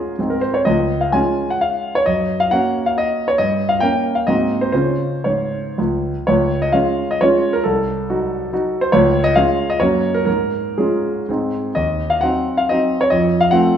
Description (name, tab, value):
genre	classical, romantic triple-time dance for piano with dotted rhythms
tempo	107-152 BPM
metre	3/4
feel	rubato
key	Db major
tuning	A4 = 441 Hz
part	clear grand piano	solo	0.0-13.8 s	C2 to Ab5	-15 LUFS	equal	none
room	wet large studio reverb, RT60 1.3 s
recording	heard from further back in the room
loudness	-15 LUFS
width	side -9 dB against mid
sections	0.0-6.3 A section; 6.3-13.8 A section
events	none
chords	0.2 Ab; 0.7 Db; 2.1 Gb; 3.4 Gm7b5; 4.3 Ab9; 4.7 Db; 7.6 Cdim7; 8.9 Db; 9.8 Gb; 10.3 Db/Ab; 11.3 Ab; 11.8 Cdim/Eb; 13.1 F